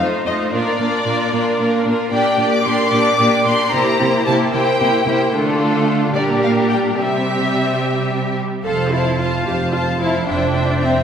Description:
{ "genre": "quick classical-period movement for string orchestra", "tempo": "74 BPM (dotted quarters)", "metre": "6/8", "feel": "straight", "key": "F major", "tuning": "A4 = 438 Hz", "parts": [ { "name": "clear symphonic violin section", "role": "melody", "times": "0.0-11.0 s", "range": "D5 to D6", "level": "-21 LUFS", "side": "left 2 dB", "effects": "none" }, { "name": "clear symphonic violin section", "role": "second line", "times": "0.0-11.0 s", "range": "F4 to F5", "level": "-20 LUFS", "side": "left 2 dB", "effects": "none" }, { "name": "clear symphonic viola section", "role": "accompaniment", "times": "0.0-11.0 s", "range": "G3 to A4", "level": "-20 LUFS", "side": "equal", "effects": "none" }, { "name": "rich symphonic cello section", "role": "bass", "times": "0.0-11.0 s", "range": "F2 to D3", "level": "-22 LUFS", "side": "right 3 dB", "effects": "none" }, { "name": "clear symphonic double bass section", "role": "bass", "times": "8.6-11.0 s", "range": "F1", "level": "-22 LUFS", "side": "right 3 dB", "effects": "none" } ], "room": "wet concert hall reverb, RT60 1.8 s", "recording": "recorded in a church or concert hall", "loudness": "-15 LUFS", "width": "side -8 dB against mid", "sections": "0.0-8.6 A section; 8.6-11.0 B section", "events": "none", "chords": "0.0 F7; 0.5 Bb; 3.7 C7; 5.3 Dm; 6.1 Gm/Bb; 7.0 C; 8.6 F; 10.3 C/F" }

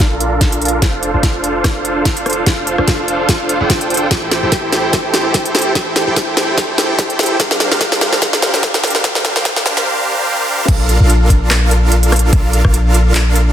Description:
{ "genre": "future bass", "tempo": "146 BPM", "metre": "4/4", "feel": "swing 55% on 16ths, half-time", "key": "Bb lydian", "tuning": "A4 = 438 Hz", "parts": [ { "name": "supersaw chords", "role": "riff", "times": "0.0-13.5 s", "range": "D4 to G5", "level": "-16 LUFS", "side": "right 1 dB", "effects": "sidechain pumping, low-pass filter, tape echo" }, { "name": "warm 808-style bass", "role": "bass", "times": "0.0-13.5 s", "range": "F1 to C2", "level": "-15 LUFS", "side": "equal", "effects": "sidechain pumping" }, { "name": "electronic kick drum", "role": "drums", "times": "0.0-12.7 s", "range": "none", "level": "-15 LUFS", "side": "equal", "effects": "none" }, { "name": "trap drum kit", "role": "drums", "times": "0.0-13.4 s", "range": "crash cymbal, handclaps, hi-hat, rim click, snare drum", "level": "-16 LUFS", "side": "equal", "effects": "none" } ], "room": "moderate digital room reverb, RT60 1.1 s", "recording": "dense, heavily limited modern master, high-pass filter", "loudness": "-11 LUFS", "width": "side -10 dB against mid", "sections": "0.0-10.7 A section; 10.7-13.5 B section", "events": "build-up 0.0-10.7; drum fill 0.0-9.9; filter sweep on supersaw synth 0.0-10.7; filter sweep 0.0-10.7; drop 10.7-13.5", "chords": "0.0 Bbmaj7; 0.8 F6; 4.1 Am7; 7.4 C9sus4; 10.7 Bbmaj7" }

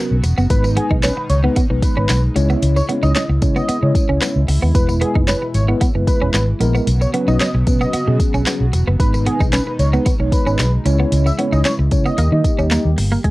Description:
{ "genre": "dance-pop", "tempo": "113 BPM", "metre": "4/4", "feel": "straight", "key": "G# minor", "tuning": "A4 = 441 Hz", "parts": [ { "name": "mellow tine electric piano", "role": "accompaniment", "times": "0.0-12.9 s", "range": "F#3 to D#5", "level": "-21 LUFS", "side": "equal", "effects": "medium stereo tremolo, cassette tape" }, { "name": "chorused pulse-width pad", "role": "sustained chords", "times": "0.0-13.3 s", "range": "B2 to A#4", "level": "-28 LUFS", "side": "equal", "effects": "sidechain pumping, cassette tape" }, { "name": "twelve-string electric guitar", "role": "riff", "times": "0.0-13.3 s", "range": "G#3 to D#4", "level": "-22 LUFS", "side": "right 2 dB", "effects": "analog chorus, cassette tape" }, { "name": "vintage muted fingered electric bass", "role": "bass", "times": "0.1-13.3 s", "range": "E1 to D#3", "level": "-16 LUFS", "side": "equal", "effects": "sidechain pumping" }, { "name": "deep house drum kit", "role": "drums", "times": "0.2-13.3 s", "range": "handclaps, hi-hat, kick drum, snare drum", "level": "-18 LUFS", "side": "equal", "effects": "cassette tape" }, { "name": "tambourine", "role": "percussion", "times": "0.2-13.2 s", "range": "none", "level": "-34 LUFS", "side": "left 4 dB", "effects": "none" }, { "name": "octave-doubled lead", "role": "melody", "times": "0.5-12.4 s", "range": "G#4 to E5", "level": "-25 LUFS", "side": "equal", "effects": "chorus" } ], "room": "light reverb", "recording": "home recording on cassette", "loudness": "-14 LUFS", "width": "side -19 dB against mid", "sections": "0.0-13.2 A section", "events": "drop 0.0-13.2", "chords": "0.0 Bsus2; 0.5 G#m; 2.4 C#m; 4.7 E; 6.9 Bsus2; 9.0 G#m; 10.9 C#m; 12.2 D#" }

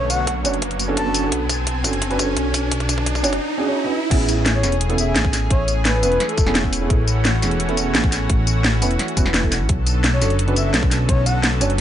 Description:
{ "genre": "liquid drum and bass", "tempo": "172 BPM", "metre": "4/4", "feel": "straight", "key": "A major", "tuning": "A4 = 441 Hz", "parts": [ { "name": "breathy flute-like synth lead", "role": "melody", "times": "0.0-1.2, 4.5-6.6, 10.1-11.5 s", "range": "A4 to A5", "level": "-26 LUFS", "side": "left 2 dB", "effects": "chorus, vintage 12-bit sampler grit, tape echo" }, { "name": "felt-muted upright piano", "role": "accompaniment", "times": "0.0-11.7 s", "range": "B3 to C#5", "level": "-24 LUFS", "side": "right 2 dB", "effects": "digital delay" }, { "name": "lush unison pad", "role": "sustained chords", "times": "0.0-11.8 s", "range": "D3 to G#5", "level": "-27 LUFS", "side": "equal", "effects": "chorus, vintage 12-bit sampler grit, sidechain pumping" }, { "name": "dark detuned saw bass", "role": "bass", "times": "0.0-11.8 s", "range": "E1 to B1", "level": "-21 LUFS", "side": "equal", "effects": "none" }, { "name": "riser", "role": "sound effects", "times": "0.0-4.1 s", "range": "none", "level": "-25 LUFS", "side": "right 1 dB", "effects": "none" }, { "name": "garage drum kit", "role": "drums", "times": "0.1-11.8 s", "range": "crash cymbal, hi-hat, snare drum, tambourine", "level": "-21 LUFS", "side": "left 1 dB", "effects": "none" }, { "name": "electronic kick drum", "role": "drums", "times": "0.3-11.2 s", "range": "none", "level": "-20 LUFS", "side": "equal", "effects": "high-pass filter on kick, high-pass filter on room" } ], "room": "light reverb, digital ambience", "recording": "nothing above 10.6 kHz", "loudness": "-16 LUFS", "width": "side -10 dB against mid", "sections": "0.0-4.1 A section; 4.1-11.8 B section", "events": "build-up 0.0-4.1; drum fill 0.0-3.4; riser 0.0-4.1; filter sweep on analog synth pad 0.0-4.1; drop 4.1-11.8", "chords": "0.0 Bm7; 3.9 N.C.; 4.1 Amaj7; 9.7 Bm7" }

